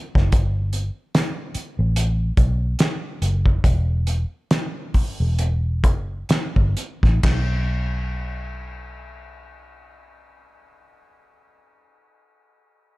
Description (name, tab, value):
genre	lush 1970s-style soul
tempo	63-74 BPM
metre	4/4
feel	swing 58% on 16ths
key	unclear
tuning	A4 = 440 Hz
part	vintage muted fingered electric bass	bass	0.2-12.0 s	E1 to B1	-21 LUFS	equal	none
part	cloth-damped thuddy drum kit	drums	0.2-7.5 s	hi-hat, kick drum, ride cymbal, snare drum	-20 LUFS	equal	none
room	little or no reverb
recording	none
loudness	-19 LUFS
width	side -20 dB against mid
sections	0.0-7.2 A section; 7.2-11.1 B section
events	slowing down 0.3-7.2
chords	none